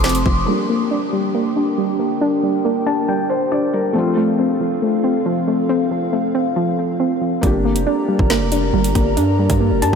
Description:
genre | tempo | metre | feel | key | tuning
hip hop, drill | 138 BPM | 4/4 | half-time | G minor | A4 = 438 Hz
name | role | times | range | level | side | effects
felt-muted upright piano | accompaniment | 0.0-10.0 s | A3 to A5 | -24 LUFS | left 3 dB | low-pass filter
dark analog pad | sustained chords | 0.0-10.0 s | C4 to Bb5 | -22 LUFS | equal | chorus, low-pass filter
soft round pluck | arpeggios | 0.0-10.0 s | F3 to D4 | -19 LUFS | equal | chorus, low-pass filter, ping-pong delay
hard-hitting 808-style bass | bass | 0.0-0.5, 7.4-10.0 s | F1 to G2 | -20 LUFS | equal | none
drill drum kit | drums | 0.0-0.4, 7.4-10.0 s | hi-hat, kick drum, snare drum | -22 LUFS | equal | none
room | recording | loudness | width
moderate huge ambient reverb, RT60 8.2 s | dreamy mix soaked in reverb | -16 LUFS | side -6 dB against mid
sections
0.5-7.4 A section; 7.4-10.0 B section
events
filter sweep 0.5-7.4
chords
0.5 Gm; 4.0 F; 7.4 Gm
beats
0.04 | 0.47 0.91 1.34 1.78 | 2.21 2.65 3.08 3.52 | 3.95 4.39 4.82 5.26 | 5.69 6.13 6.56 7.00 | 7.43 7.87 8.30 8.73 | 9.17 9.61

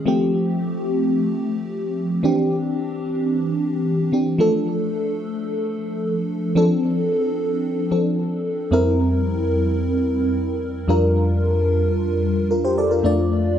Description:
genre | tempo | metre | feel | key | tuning
pop | 111 BPM | 4/4 | straight | F major | A4 = 439 Hz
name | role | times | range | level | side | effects
FM electric piano with soft pad layer | solo | 0.0-13.6 s | F2 to D5 | -18 LUFS | equal | chorus, phaser, tape echo
room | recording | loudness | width
wet studio reverb, RT60 0.7 s | lossy compression artefacts | -18 LUFS | side -9 dB against mid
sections
0.0-4.4 A section; 4.4-13.6 B section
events
none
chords
0.1 Fadd9; 2.2 Cadd9; 4.4 Dm/F; 6.6 F6; 8.7 C7/F; 10.9 Gm7/F; 13.0 Dm/F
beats
| 0.08 0.62 1.16 1.70 | 2.24 2.78 3.32 3.86 | 4.40 4.94 5.48 6.02 | 6.56 7.10 7.64 8.19 | 8.72 9.27 9.81 10.35 | 10.89 11.43 11.97 12.51 | 13.05

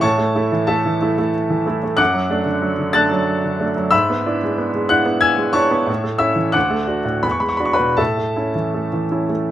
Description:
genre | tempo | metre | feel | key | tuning
classical, romantic character piece for solo piano | 77-96 BPM | 3/4 | rubato | A major | A4 = 440 Hz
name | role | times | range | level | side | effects
clear baby grand piano | solo | 0.0-9.5 s | D2 to A6 | -16 LUFS | equal | none
room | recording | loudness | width
little or no reverb | close, detailed microphones | -16 LUFS | side -12 dB against mid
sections
0.0-9.5 A section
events
none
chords
0.0 A; 2.0 D/F#; 3.9 E7/G#; 5.9 A; 6.5 D; 7.2 E9; 8.0 A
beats
| 0.01 0.69 1.35 | 1.99 2.63 3.28 | 3.92 4.58 5.23 | 5.88 6.55 7.24 | 7.99 8.76 9.51

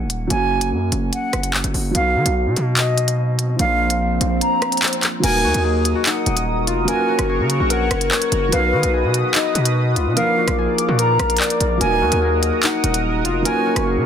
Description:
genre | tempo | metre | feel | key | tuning
hip hop, drill | 146 BPM | 4/4 | half-time | Eb minor | A4 = 440 Hz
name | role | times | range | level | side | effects
dark grand piano | accompaniment | 0.0-14.1 s | F3 to Gb4 | -24 LUFS | right 2 dB | none
distorted 808-style bass | bass | 0.0-14.1 s | Eb1 to D#3 | -21 LUFS | equal | distortion
drill drum kit | drums | 0.1-13.9 s | crash cymbal, handclaps, hi-hat, rim click | -21 LUFS | equal | none
silver concert flute | second line | 0.3-13.8 s | D#5 to Bb5 | -23 LUFS | right 1 dB | tape echo
swell | sound effects | 3.1-5.2 s | none | -28 LUFS | right 1 dB | none
concert harp | melody | 5.2-14.1 s | Eb4 to D5 | -22 LUFS | left 5 dB | tape echo
sweeping resonant pad | sustained chords | 5.2-14.1 s | Gb4 to Eb6 | -25 LUFS | right 1 dB | chorus
room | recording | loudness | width
light reverb, small room ambience | dense, heavily limited modern master | -16 LUFS | side -8 dB against mid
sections
0.0-5.2 A section; 5.2-14.1 B section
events
swell 3.1-5.2; kick muted 4.4-5.2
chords
0.3 Gb; 1.9 B; 3.6 Bb; 5.2 Ebm; 6.9 Gb; 8.5 B; 10.2 Bb; 11.8 Ebm; 13.5 Gb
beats
| 0.30 0.71 1.13 1.54 | 1.95 2.36 2.77 3.18 | 3.59 4.00 4.41 4.83 | 5.24 5.65 6.06 6.47 | 6.88 7.29 7.70 8.11 | 8.52 8.93 9.35 9.76 | 10.17 10.58 10.99 11.40 | 11.81 12.22 12.63 13.04 | 13.46 13.87

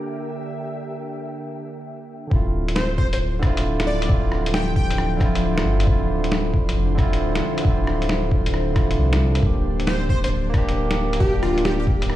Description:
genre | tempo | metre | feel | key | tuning
future garage | 135 BPM | 4/4 | swing 66% on 16ths | D minor | A4 = 440 Hz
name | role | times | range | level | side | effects
barky tine electric piano | accompaniment | 0.0-12.2 s | D3 to G4 | -26 LUFS | right 3 dB | sidechain pumping, tape echo
ethereal airy pad | sustained chords | 0.0-12.2 s | D3 to E5 | -29 LUFS | left 1 dB | ensemble chorus, built-in reverb, sidechain pumping
wind-like tuned noise texture | texture | 0.0-1.4 s | G5 | -42 LUFS | equal | built-in reverb
warm sub bass | bass | 2.3-12.2 s | D1 to C2 | -23 LUFS | equal | sidechain pumping
electronic kick drum | drums | 2.3-12.0 s | none | -20 LUFS | equal | small room ambience
lo-fi sampler-style drum kit | drums | 2.7-12.2 s | hi-hat, rim click, snare drum | -28 LUFS | left 1 dB | small room ambience
plucky unison lead | melody | 2.8-5.1, 9.9-11.8 s | F4 to G5 | -27 LUFS | equal | tape echo
room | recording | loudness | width
light reverb, digital ambience | played on a big sound system in a bare room, large studio reverb | -18 LUFS | side -14 dB against mid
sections
0.0-2.3 A section; 2.3-12.2 B section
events
break 1.4-2.3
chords
0.0 Gm/D; 2.3 Dm9; 9.4 Gm/D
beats
0.09 | 0.54 0.98 1.43 1.87 | 2.32 2.76 3.20 3.65 | 4.09 4.54 4.98 5.43 | 5.87 6.32 6.76 7.20 | 7.65 8.09 8.54 8.98 | 9.43 9.87 10.32 10.76 | 11.20 11.65 12.09

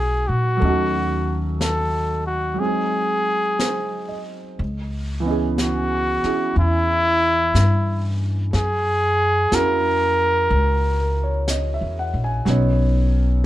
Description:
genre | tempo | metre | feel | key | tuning
jazz ballad | 61 BPM | 4/4 | swing 67% on 8ths | C# minor from 4.6 s | A4 = 443 Hz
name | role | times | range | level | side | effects
breathy trumpet | melody | 0.0-11.5 s | E4 to A#4 | -20 LUFS | equal | none
warm concert grand piano | accompaniment | 0.0-13.5 s | E3 to G#5 | -25 LUFS | right 2 dB | none
upright bass | bass | 0.0-13.5 s | A#1 to A#2 | -21 LUFS | equal | none
jazz brush drum kit | drums | 0.6-13.5 s | brushed snare drum, hi-hat, snare drum | -30 LUFS | left 1 dB | none
room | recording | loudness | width
little or no reverb | close, detailed microphones | -18 LUFS | side -14 dB against mid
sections
0.0-4.6 A section; 4.6-13.5 B section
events
none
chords
0.0 G#m9; 0.6 D#m7b5; 2.6 G#7; 4.6 C#m9; 8.5 F#9; 12.5 Badd9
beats
| 0.62 1.60 2.59 3.59 | 4.59 5.58 6.56 7.54 | 8.53 9.52 10.50 11.48 | 12.46 13.44

